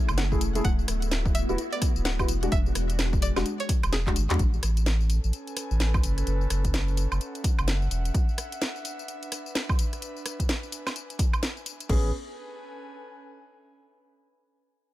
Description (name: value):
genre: UK garage, two-step garage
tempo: 128 BPM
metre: 4/4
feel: swing 61% on 16ths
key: A major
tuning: A4 = 442 Hz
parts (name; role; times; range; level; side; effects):
- soft string machine; sustained chords; 0.0-4.4 s; G#3 to G#4; -36 LUFS; equal; ensemble chorus, sidechain pumping
- saturated sub bass; bass; 0.1-8.1, 11.9-12.1 s; D1 to E2; -26 LUFS; equal; none
- garage drum kit; drums; 0.1-12.0 s; crash cymbal, handclaps, hi-hat, rim click, snare drum, tambourine, woodblock; -32 LUFS; equal; none
- string-like resonator pluck; melody; 0.2-4.1 s; G#4 to F#5; -36 LUFS; right 1 dB; chorus, ping-pong delay
- dark grand piano; stabs; 0.3-4.4, 11.9-12.1 s; G#3 to G#4; -32 LUFS; left 2 dB; tape echo
- electronic kick drum; drums; 0.3-12.0 s; none; -26 LUFS; equal; none
- airy breathy pad; texture; 4.8-13.7 s; C#4 to G#5; -39 LUFS; equal; chorus, sidechain pumping
room: little or no reverb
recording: none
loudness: -24 LUFS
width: side -16 dB against mid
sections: 0.0-4.4 A section; 4.4-11.9 B section; 11.9-13.8 C section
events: drop 0.0-4.4; drum fill 4.0-4.4; fade-out on analog synth pad 4.4-11.9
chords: 0.0 F#m7; 0.6 D69; 2.3 E7; 4.4 Amaj9; 6.0 F#m7; 8.1 D69; 9.8 E7; 11.9 Amaj9